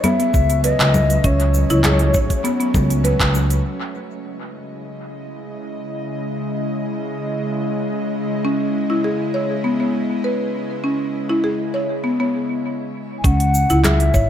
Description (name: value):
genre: organic downtempo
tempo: 100 BPM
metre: 4/4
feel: straight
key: C# minor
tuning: A4 = 441 Hz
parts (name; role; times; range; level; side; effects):
- mellow bansuri; melody; 0.0-3.0, 13.2-14.3 s; C#5 to G#5; -22 LUFS; left 3 dB; analog delay, shimmer reverb
- bowed-like drone; sustained chords; 0.0-14.3 s; C#3 to D#5; -25 LUFS; left 1 dB; built-in reverb, sidechain pumping, shimmer reverb
- buzzing marimba with medium mallets; arpeggios; 0.0-3.2, 8.4-14.3 s; B3 to C#5; -21 LUFS; equal; dub echo, shimmer reverb
- organic electronic drum kit; drums; 0.0-3.6, 13.2-14.3 s; cabasa, congas, handclaps, hi-hat; -22 LUFS; equal; low-pass filter on hats, low-pass filter on perc, low-pass filter on snare, low-pass filter on room, analog delay
- upright bass; bass; 0.3-3.6, 13.2-14.3 s; G#1 to C#2; -17 LUFS; equal; none
- electronic kick drum; drums; 0.3-3.3, 13.2-14.3 s; none; -18 LUFS; equal; none
room: moderate plate reverb, RT60 2.1 s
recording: echo-heavy mix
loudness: -16 LUFS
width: side -10 dB against mid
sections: 0.0-3.6 A section; 3.6-13.2 B section; 13.2-14.3 C section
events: break 12.6-13.2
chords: 0.0 F#m; 3.6 C#m